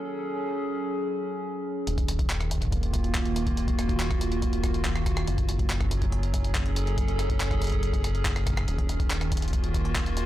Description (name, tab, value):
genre	IDM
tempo	141 BPM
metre	4/4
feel	straight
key	unclear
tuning	A4 = 440 Hz
part	warbly tape-like pad	sustained chords	0.0-10.3 s	Eb3 to A4	-31 LUFS	right 1 dB	chorus, built-in reverb, vintage 12-bit sampler grit, sidechain pumping
part	round analog bass	bass	1.9-10.3 s	Eb1 to Gb1	-28 LUFS	equal	none
part	jungle sampler-style drum kit	drums	1.9-10.3 s	handclaps, hi-hat, rim click	-34 LUFS	equal	soft clipping on snare
part	electronic kick drum	drums	2.0-10.0 s	none	-29 LUFS	equal	overdrive
room	digital ambience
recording	blown-out, overdriven recording, overdrive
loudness	-25 LUFS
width	side -14 dB against mid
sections	0.0-1.9 A section; 1.9-10.3 B section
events	none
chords	0.0 Gbm; 1.9 Ebm7; 5.3 Gbm; 8.7 Ebm7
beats	| 0.17 0.59 1.02 1.45 | 1.87 2.30 2.72 3.15 | 3.57 4.00 4.42 4.85 | 5.28 5.70 6.13 6.55 | 6.98 7.40 7.83 8.25 | 8.68 9.11 9.53 9.96